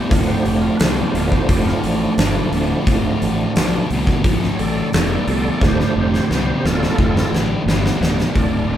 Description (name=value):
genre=blues rock power trio and southern rock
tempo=87 BPM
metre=4/4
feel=straight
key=D minor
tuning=A4 = 440 Hz
part: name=overdriven tonewheel organ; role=sustained chords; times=0.0-8.8 s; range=F3 to D5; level=-24 LUFS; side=right 1 dB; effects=chorus vibrato, fast rotary speaker
part: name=thick fuzz guitar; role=riff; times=0.0-8.8 s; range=D2 to D3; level=-20 LUFS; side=right 1 dB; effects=distortion
part: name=fuzz fingered electric bass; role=bass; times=0.1-8.8 s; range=D1 to C2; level=-22 LUFS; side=equal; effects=overdrive
part: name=huge arena drum kit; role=drums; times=0.1-8.5 s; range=hi-hat, kick drum, snare drum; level=-19 LUFS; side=equal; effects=none
room=light reverb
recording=band playing live in one room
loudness=-15 LUFS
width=side -11 dB against mid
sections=0.0-8.4 A section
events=tonewheel organ solo 0.0-8.4; drum fill 5.6-8.4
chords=0.0 Dm